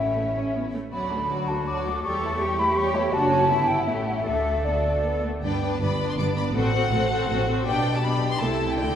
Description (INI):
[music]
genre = quick classical-period movement for symphony orchestra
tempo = 161 BPM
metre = 3/4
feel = rubato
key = D major, G major from 5.4 s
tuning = A4 = 440 Hz
[part]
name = rich chamber violin section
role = melody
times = 0.0-9.0 s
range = F#4 to D6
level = -32 LUFS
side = left 4 dB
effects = none
[part]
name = mellow hollow silver concert flute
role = second line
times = 0.0-5.2 s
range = C#5 to D6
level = -25 LUFS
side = left 1 dB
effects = none
[part]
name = rich chamber violin section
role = second line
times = 0.0-9.0 s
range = C#4 to D5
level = -31 LUFS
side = left 3 dB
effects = none
[part]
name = rich chamber viola section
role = accompaniment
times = 0.0-9.0 s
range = F#3 to F#4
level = -30 LUFS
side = right 1 dB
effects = none
[part]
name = clear chamber cello section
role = bass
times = 0.0-9.0 s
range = G2 to A4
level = -30 LUFS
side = right 1 dB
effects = none
[part]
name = clear chamber double bass section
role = bass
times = 0.0-9.0 s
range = F#1 to E2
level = -28 LUFS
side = right 1 dB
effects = none
[sound]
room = wet scoring stage reverb, RT60 1.8 s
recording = heard from further back in the room, lossy compression artefacts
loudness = -22 LUFS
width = side -9 dB against mid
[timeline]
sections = 0.0-5.4 A section; 5.4-9.0 B section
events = none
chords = 0.0 A; 0.9 D; 2.0 A7/E; 3.1 D/F#; 3.5 Em/G; 3.9 A7; 4.3 D; 5.4 G; 6.6 F#dim/A; 7.7 G/B; 8.4 Am/C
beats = 0.17 0.55 | 0.92 1.30 1.67 | 2.04 2.41 2.77 | 3.14 3.50 3.88 | 4.26 4.65 5.04 | 5.44 5.82 6.18 | 6.55 6.92 7.29 | 7.66 8.03 8.40 | 8.78